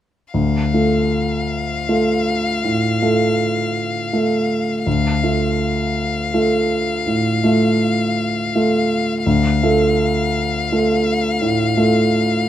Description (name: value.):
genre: classical, slow romantic movement for piano quartet.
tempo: 51-58 BPM (dotted quarters).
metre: 12/8.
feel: rubato.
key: D minor.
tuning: A4 = 440 Hz.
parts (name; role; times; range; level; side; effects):
rich violin; melody; 0.3-12.5 s; F5; -23 LUFS; left 6 dB; none.
warm concert grand piano; accompaniment; 0.3-12.5 s; D2 to A4; -16 LUFS; right 1 dB; none.
room: light reverb.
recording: close, detailed microphones.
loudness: -16 LUFS.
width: side -11 dB against mid.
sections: 0.3-12.5 A section.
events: none.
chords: 0.3 Dm.